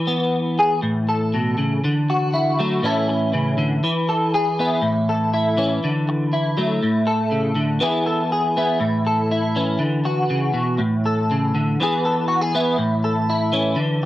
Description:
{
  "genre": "highlife",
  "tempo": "120 BPM",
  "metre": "4/4",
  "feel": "straight",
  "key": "A major",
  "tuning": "A4 = 440 Hz",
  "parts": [
    { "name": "clean electric guitar", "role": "solo", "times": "0.0-14.1 s", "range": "A2 to A4", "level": "-18 LUFS", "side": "equal", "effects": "ensemble chorus, cassette tape" }
  ],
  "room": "moderate spring reverb, RT60 1.4 s, digital ambience",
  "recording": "home recording on cassette",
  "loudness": "-18 LUFS",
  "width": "side -15 dB against mid",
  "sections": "0.8-14.1 A section",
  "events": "none",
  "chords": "0.0 E; 0.8 A; 1.8 Dadd9; 2.8 A; 3.8 E; 4.8 A; 5.8 Dadd9; 6.8 A; 7.8 E; 8.8 A; 9.8 Dadd9; 10.8 A; 11.8 E; 12.8 A"
}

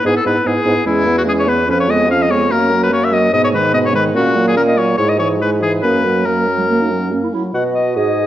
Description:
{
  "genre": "quick classical-period movement for wind quintet",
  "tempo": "145 BPM",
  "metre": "4/4",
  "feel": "straight",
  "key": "unclear",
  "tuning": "A4 = 440 Hz",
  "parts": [
    { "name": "bright oboe", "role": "second line", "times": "0.0-8.3 s", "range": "E4 to F#5", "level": "-16 LUFS", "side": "left 2 dB", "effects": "none" },
    { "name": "clear French horn", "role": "accompaniment", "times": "0.0-8.2 s", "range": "B2 to F#4", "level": "-20 LUFS", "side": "equal", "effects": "none" },
    { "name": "dark clarinet", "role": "accompaniment", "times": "0.0-8.3 s", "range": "F#3 to G#4", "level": "-21 LUFS", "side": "right 4 dB", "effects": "none" },
    { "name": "mellow bassoon", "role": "bass", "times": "0.1-8.3 s", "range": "E2 to B2", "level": "-18 LUFS", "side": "right 1 dB", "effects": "none" },
    { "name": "mellow hollow concert flute", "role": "melody", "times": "7.5-8.3 s", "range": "D#5", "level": "-22 LUFS", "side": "left 6 dB", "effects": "none" }
  ],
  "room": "moderate recital hall reverb, RT60 1.5 s",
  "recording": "worn, warbling old tape, cassette tape, warbly pitch drift",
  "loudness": "-12 LUFS",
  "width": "side -12 dB against mid",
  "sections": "0.0-7.5 A section",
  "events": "none",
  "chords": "0.0 E/G#; 0.9 C#m7/E; 1.7 C#7/E#; 2.5 F#; 3.3 G#m; 4.2 F#/A#; 5.0 E/G#; 5.8 F#; 7.5 B"
}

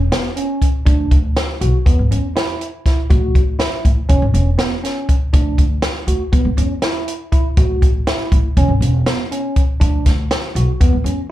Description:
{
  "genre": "progressive instrumental, band music in an uneven meter",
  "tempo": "242 BPM (eighths)",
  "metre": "9/8",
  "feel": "straight",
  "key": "E mixolydian",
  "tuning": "A4 = 440 Hz",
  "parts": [
    { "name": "bright tine electric piano", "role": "arpeggios", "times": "0.0-11.2 s", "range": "B3 to F#4", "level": "-22 LUFS", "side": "right 1 dB", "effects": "lush chorus, slapback echo" },
    { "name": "upright bass", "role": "bass", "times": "0.0-11.3 s", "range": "E1 to G#2", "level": "-17 LUFS", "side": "equal", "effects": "none" },
    { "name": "compact cocktail drum kit", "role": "drums", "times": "0.1-11.2 s", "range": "hi-hat, kick drum, snare drum", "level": "-15 LUFS", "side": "equal", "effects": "none" }
  ],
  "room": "little or no reverb",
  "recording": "live gig heard through the venue's PA, club reverb",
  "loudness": "-14 LUFS",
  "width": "side -14 dB against mid",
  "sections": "0.0-11.3 A section",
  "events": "none",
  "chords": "0.0 E5 (rootless); 0.9 D; 1.9 E5; 3.1 A5; 4.1 E5; 5.3 D; 6.3 E5; 7.6 A5; 8.6 E5; 9.8 D; 10.8 E6"
}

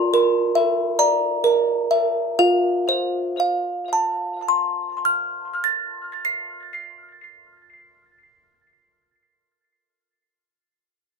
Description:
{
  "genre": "classical, lullaby for music box",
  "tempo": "41 BPM (dotted quarters)",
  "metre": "6/8",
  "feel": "straight",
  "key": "F major",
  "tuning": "A4 = 444 Hz",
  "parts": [
    { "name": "music box", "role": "solo", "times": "0.0-9.7 s", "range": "F4 to C7", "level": "-19 LUFS", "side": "equal", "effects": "tape echo" }
  ],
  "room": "light reverb",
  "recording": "close, detailed microphones",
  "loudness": "-19 LUFS",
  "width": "side -5 dB against mid",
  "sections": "0.0-2.4 A section; 2.4-8.2 B section",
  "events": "slowing down 0.0-2.4",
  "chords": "0.0 C7/F; 2.4 F"
}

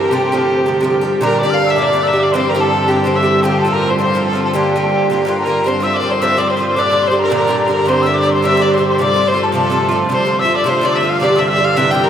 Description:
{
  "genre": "celtic folk, Celtic reel",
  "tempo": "216 BPM",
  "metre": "4/4",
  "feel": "swing 58% on 8ths",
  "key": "unclear",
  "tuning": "A4 = 440 Hz",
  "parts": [
    { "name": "rich fiddle", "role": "melody", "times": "0.0-12.1 s", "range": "G4 to G5", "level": "-17 LUFS", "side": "left 1 dB", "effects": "none" },
    { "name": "mellow hollow wooden whistle", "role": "second line", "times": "0.0-12.1 s", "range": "G5 to F6", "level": "-20 LUFS", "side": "left 3 dB", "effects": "none" },
    { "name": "Irish bouzouki", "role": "accompaniment", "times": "0.0-12.1 s", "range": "G2 to G4", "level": "-16 LUFS", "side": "right 2 dB", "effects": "none" },
    { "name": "warm studio string section", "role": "drone", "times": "0.0-12.1 s", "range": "G2 to D3", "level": "-22 LUFS", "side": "right 1 dB", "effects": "none" }
  ],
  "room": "wet huge ambient reverb, RT60 7.7 s",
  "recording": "in a vast, echoing space",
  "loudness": "-12 LUFS",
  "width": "side -9 dB against mid",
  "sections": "0.0-5.7 A section; 5.7-12.1 B section",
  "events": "none",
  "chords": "0.1 Fadd9; 1.2 Gm; 2.3 C/G; 3.4 F; 4.5 Gm7; 5.7 Csus4; 6.8 Gm; 7.9 Csus2/G; 9.0 F; 11.2 Cadd9"
}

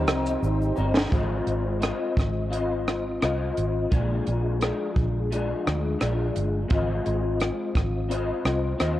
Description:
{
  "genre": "indie pop, bedroom pop",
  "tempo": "86 BPM",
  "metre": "4/4",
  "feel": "swing 55% on 16ths",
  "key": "Ab lydian",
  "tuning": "A4 = 443 Hz",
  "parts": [
    { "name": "electric guitar through a small old amp", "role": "accompaniment", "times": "0.0-9.0 s", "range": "Bb2 to Eb5", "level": "-27 LUFS", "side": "left 3 dB", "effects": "ensemble chorus, warbly pitch drift" },
    { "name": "lush unison pad", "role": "sustained chords", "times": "0.0-1.1 s", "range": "F3 to C5", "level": "-35 LUFS", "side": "right 3 dB", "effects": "chorus, phaser" },
    { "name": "vintage muted fingered electric bass", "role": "bass", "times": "0.0-9.0 s", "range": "G1 to Eb2", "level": "-27 LUFS", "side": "right 1 dB", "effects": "none" },
    { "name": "compact cocktail drum kit", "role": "drums", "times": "0.1-9.0 s", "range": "hi-hat, kick drum, rim click, shaker, snare drum", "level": "-27 LUFS", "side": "right 1 dB", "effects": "none" },
    { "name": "egg shaker", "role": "percussion", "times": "0.1-1.1 s", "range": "none", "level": "-56 LUFS", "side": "right 6 dB", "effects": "none" }
  ],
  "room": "light reverb, small room ambience",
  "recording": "worn, warbling old tape, cassette tape, warbly pitch drift",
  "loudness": "-23 LUFS",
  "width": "side -14 dB against mid",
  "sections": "0.0-1.1 A section; 1.1-9.0 B section",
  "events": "drum fill 0.4-1.1",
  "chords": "0.0 Abmaj7; 1.1 Ab6; 3.9 Bb7; 6.7 Ab6"
}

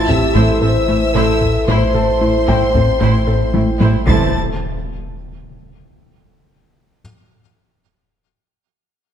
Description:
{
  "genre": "cinematic, hybrid orchestral and electronic film score",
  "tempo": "113 BPM",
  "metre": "5/4",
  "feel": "straight",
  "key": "A minor",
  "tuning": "A4 = 440 Hz",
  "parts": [
    { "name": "rich studio violin section", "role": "melody", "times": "0.0-4.4 s", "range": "C6 to A6", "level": "-26 LUFS", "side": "equal", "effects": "none" },
    { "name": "warm symphonic violin section", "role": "second line", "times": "0.0-4.4 s", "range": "C5 to A5", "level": "-27 LUFS", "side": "left 1 dB", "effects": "none" },
    { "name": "clear studio viola section", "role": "accompaniment", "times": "0.0-4.4 s", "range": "A3 to C5", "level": "-25 LUFS", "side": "equal", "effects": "none" },
    { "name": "dark trombone section", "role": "sustained chords", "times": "0.0-4.3 s", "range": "E3 to E4", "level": "-23 LUFS", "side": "equal", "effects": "none" },
    { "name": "warm French horn section", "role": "sustained chords", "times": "0.0-4.3 s", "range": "C4 to C5", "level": "-20 LUFS", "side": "left 1 dB", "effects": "none" },
    { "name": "pure sine sub bass", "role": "bass", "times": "0.0-4.4 s", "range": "A1", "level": "-22 LUFS", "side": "equal", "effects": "none" },
    { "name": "felt-muted upright piano", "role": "texture", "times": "0.0-4.4 s", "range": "A4 to A5", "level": "-28 LUFS", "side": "equal", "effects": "ping-pong delay" },
    { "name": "soft round pluck", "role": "arpeggios", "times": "0.1-4.0 s", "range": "A3 to A4", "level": "-24 LUFS", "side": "right 2 dB", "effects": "chorus, ping-pong delay" },
    { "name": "rubbery square bass", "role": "riff", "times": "0.1-4.0 s", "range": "A2 to A3", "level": "-19 LUFS", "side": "left 3 dB", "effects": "none" },
    { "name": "rich studio double bass section", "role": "bass", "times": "0.1-4.4 s", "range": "A1", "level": "-23 LUFS", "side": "right 4 dB", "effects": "none" },
    { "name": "warm symphonic cello section", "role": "bass", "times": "0.1-4.4 s", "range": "A2", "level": "-23 LUFS", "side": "right 3 dB", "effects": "none" },
    { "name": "taiko ensemble", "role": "drums", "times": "0.1-5.1 s", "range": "none", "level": "-22 LUFS", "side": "left 1 dB", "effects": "none" },
    { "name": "impact", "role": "sound effects", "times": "4.1-6.7 s", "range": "none", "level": "-24 LUFS", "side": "equal", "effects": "none" }
  ],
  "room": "wet scoring stage reverb, RT60 1.7 s",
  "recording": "none",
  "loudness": "-12 LUFS",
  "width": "side -9 dB against mid",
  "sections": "0.0-4.3 A section; 4.3-7.0 B section",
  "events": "drum fill 3.5-4.3; impact 4.3-7.0",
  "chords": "0.0 Am; 4.3 N.C."
}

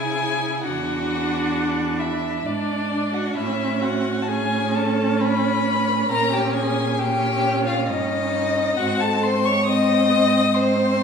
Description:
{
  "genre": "classical, slow romantic movement for string quartet",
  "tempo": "67 BPM",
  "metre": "3/4",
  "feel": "rubato",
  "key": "unclear",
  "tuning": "A4 = 440 Hz",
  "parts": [
    { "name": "warm violin", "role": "melody", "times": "0.0-11.0 s", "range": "D5 to D#6", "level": "-24 LUFS", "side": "left 4 dB", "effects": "none" },
    { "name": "rich violin", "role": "second line", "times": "0.0-11.0 s", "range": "D4 to D#5", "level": "-25 LUFS", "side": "left 2 dB", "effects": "none" },
    { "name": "warm viola", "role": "accompaniment", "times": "0.0-11.0 s", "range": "B#3 to E4", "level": "-24 LUFS", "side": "right 2 dB", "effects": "none" },
    { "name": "rich cello", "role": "bass", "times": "0.0-11.0 s", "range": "E2 to C#3", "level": "-25 LUFS", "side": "right 3 dB", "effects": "none" }
  ],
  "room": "wet concert hall reverb, RT60 1.9 s",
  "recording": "studio reverb",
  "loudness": "-19 LUFS",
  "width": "side -6 dB against mid",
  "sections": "0.0-11.0 A section",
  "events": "none",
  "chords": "0.0 C#m; 0.6 E7; 3.4 A; 6.1 D#7/A#; 8.8 G#"
}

